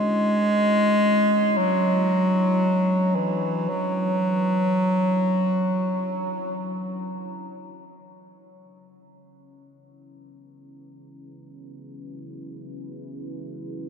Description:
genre	dark ambient drone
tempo	free time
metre	none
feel	none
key	C# phrygian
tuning	A4 = 439 Hz
part	clear bass clarinet	melody	0.0-6.9 s	E3 to G#3	-20 LUFS	equal	tape echo
part	dark analog pad	sustained chords	0.0-13.9 s	C#4 to C#5	-37 LUFS	right 1 dB	chorus
room	wet cathedral reverb, RT60 7.2 s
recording	none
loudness	-20 LUFS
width	side -6 dB against mid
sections	0.0-8.0 A section; 8.0-13.9 B section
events	fade-out on analog synth pad 0.0-8.0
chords	0.0 Dadd9; 8.0 C#m7

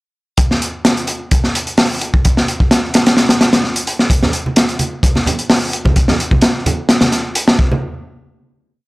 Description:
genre	breakbeat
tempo	129 BPM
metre	4/4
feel	swing 53% on 16ths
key	none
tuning	none
part	crunchy breakbeat drum kit	drums	0.4-7.7 s	hi-hat, kick drum, snare drum	-12 LUFS	equal	none
part	congas	percussion	4.2-7.8 s	none	-20 LUFS	right 2 dB	none
room	studio ambience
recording	dry, gritty hardware recording, transformer saturation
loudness	-12 LUFS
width	side -22 dB against mid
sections	0.4-7.8 drop; 7.8-8.9 final hit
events	drop 0.4-7.8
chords	none

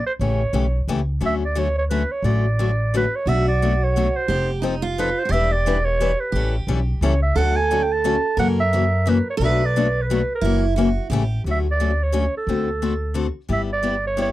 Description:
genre	acoustic string swing (jazz manouche)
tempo	176 BPM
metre	3/4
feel	swing 60% on 8ths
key	D major, B minor from 3.3 s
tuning	A4 = 440 Hz
part	growling clarinet	melody	0.0-14.3 s	A4 to A5	-23 LUFS	right 2 dB	none
part	picked steel-string acoustic guitar	accompaniment	0.2-14.3 s	B2 to B4	-24 LUFS	left 5 dB	none
part	upright bass	bass	0.2-14.3 s	E1 to F#2	-22 LUFS	equal	none
part	picked steel-string acoustic guitar	second line	3.3-11.4 s	Eb4 to B4	-26 LUFS	right 6 dB	none
room	little or no reverb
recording	dry, close 1970s-style studio recording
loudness	-18 LUFS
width	side -15 dB against mid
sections	0.0-3.3 A section; 3.3-11.4 B section; 11.4-14.3 A section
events	none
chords	0.2 A7; 1.2 Dmaj7; 3.3 Bm7; 4.3 F9; 5.3 Em7; 6.3 A7; 7.4 Dmaj7; 8.4 F#7; 9.4 Bm7; 10.4 F#7; 11.1 A7; 11.4 Dmaj7; 12.5 D7; 13.5 G6

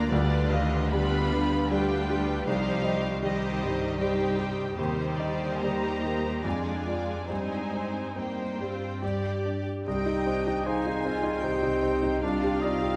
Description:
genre	classical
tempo	68-79 BPM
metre	3/4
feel	rubato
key	C minor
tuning	A4 = 440 Hz
part	rich symphonic violin section	melody	0.0-13.0 s	C5 to B5	-41 LUFS	equal	none
part	warm concert grand piano	melody	0.0-13.0 s	C2 to F5	-32 LUFS	equal	none
part	warm symphonic violin section	second line	0.0-13.0 s	Eb4 to Ab5	-38 LUFS	equal	none
part	rich symphonic viola section	accompaniment	0.0-13.0 s	G3 to G4	-37 LUFS	equal	none
part	rich symphonic cello section	bass	0.0-13.0 s	C3 to B3	-38 LUFS	equal	none
part	rich symphonic double bass section	bass	0.0-13.0 s	C2 to G2	-38 LUFS	equal	none
part	mellow French horn section	sustained chords	9.8-13.0 s	F4 to Ab4	-33 LUFS	equal	none
part	clear oboe	second line	9.9-13.0 s	C5 to Eb5	-39 LUFS	equal	none
part	small flute group	second line	9.9-13.0 s	Eb5 to G5	-41 LUFS	equal	none
part	warm trombone section	sustained chords	9.9-13.0 s	Eb3 to C4	-41 LUFS	equal	none
part	bright clarinet	second line	10.7-13.0 s	C4 to Eb4	-37 LUFS	equal	none
room	moderate concert hall reverb, RT60 1.9 s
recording	none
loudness	-28 LUFS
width	mono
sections	0.0-9.9 A section; 9.9-13.0 B section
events	none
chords	0.1 G7/D; 2.5 Cm; 4.8 Cm/Eb; 6.4 Ddim/F; 7.3 Cm/G; 9.0 G5; 9.9 Cm; 12.2 G7(no3)/C

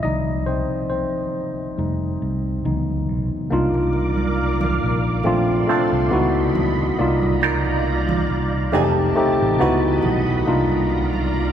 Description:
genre	R&B, neo-soul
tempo	69 BPM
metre	4/4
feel	swing 54% on 16ths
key	C dorian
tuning	A4 = 441 Hz
part	tine electric piano	accompaniment	0.0-11.5 s	Eb3 to Eb5	-21 LUFS	left 1 dB	none
part	fingered electric bass	bass	0.0-11.5 s	F1 to Db2	-23 LUFS	equal	none
part	soft string machine	sustained chords	3.7-11.5 s	F4 to D6	-27 LUFS	right 2 dB	ensemble chorus
part	congas	percussion	3.7-11.5 s	none	-30 LUFS	right 4 dB	none
part	vintage hollow-body jazz guitar	second line	5.7-9.8 s	C4 to Cb5	-27 LUFS	right 5 dB	wah
room	wet cathedral reverb, RT60 6.4 s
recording	recorded in a church or concert hall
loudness	-18 LUFS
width	side -9 dB against mid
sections	0.0-3.5 A section; 3.5-11.5 B section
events	tine electric piano solo 0.0-3.5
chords	0.0 Cm11; 1.8 F9; 2.6 Dbm11; 3.5 Cm11; 5.2 Bbmaj9; 6.1 Dbm11; 7.0 Cm11; 8.7 F9; 9.6 Dbm11; 10.5 Cm11

